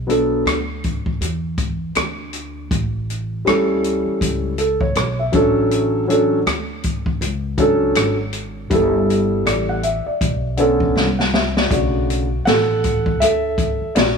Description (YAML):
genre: hip hop, jazz-hop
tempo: 80 BPM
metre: 4/4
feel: swing 62% on 16ths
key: B minor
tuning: A4 = 439 Hz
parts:
  - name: upright bass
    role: bass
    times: 0.0-14.2 s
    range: G1 to E2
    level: -24 LUFS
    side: equal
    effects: none
  - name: dark grand piano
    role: accompaniment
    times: 0.1-14.2 s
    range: C#3 to F#5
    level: -18 LUFS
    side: equal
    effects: none
  - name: open jazz drum kit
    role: drums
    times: 0.1-14.2 s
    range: hi-hat, kick drum, rim click, snare drum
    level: -21 LUFS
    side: left 1 dB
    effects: none
room: light reverb, small room ambience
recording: none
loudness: -16 LUFS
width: side -6 dB against mid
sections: 0.0-11.7 A section; 11.7-14.2 B section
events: drum fill 11.0-11.7; grand piano solo 11.7-14.2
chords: 0.0 Bm7; 2.7 A7; 5.3 Dmaj7/A; 8.7 G69; 10.2 Bm9; 11.7 Bm7